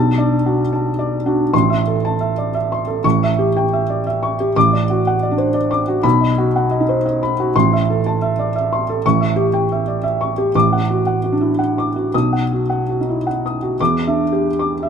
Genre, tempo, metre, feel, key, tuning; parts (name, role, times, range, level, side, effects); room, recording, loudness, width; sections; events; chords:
neoclassical minimalist piano; 106-122 BPM; 3/4; rubato; A4 = 443 Hz
felt-muted upright piano; solo; 0.0-14.9 s; A1 to D#6; -15 LUFS; right 1 dB
moderate plate reverb, RT60 2.8 s; minimal, uncompressed stereo recording; -15 LUFS; side -7 dB against mid
0.0-1.5 A section; 1.5-13.8 B section; 13.8-14.9 A section
0.0 Bm7; 1.5 Am; 3.0 A7; 4.6 D/A; 6.0 B; 7.5 Am; 9.0 A7; 10.5 D/A; 12.1 B; 13.8 Em7